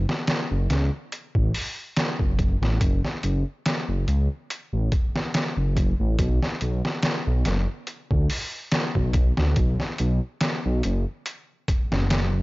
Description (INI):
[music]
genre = trip hop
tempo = 71 BPM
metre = 4/4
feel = swing 55% on 16ths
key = F# minor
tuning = A4 = 440 Hz
[part]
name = dark detuned saw bass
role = bass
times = 0.0-12.4 s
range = F#1 to D2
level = -22 LUFS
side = equal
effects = none
[part]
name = trip hop sampler-style drum kit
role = drums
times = 0.1-12.3 s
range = hi-hat, kick drum, snare drum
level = -24 LUFS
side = equal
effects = overdrive, studio reverb
[sound]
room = little or no reverb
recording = dry, gritty hardware recording, transformer saturation, nothing above 7.5 kHz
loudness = -22 LUFS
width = side -21 dB against mid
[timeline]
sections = 0.0-12.4 A section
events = none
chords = none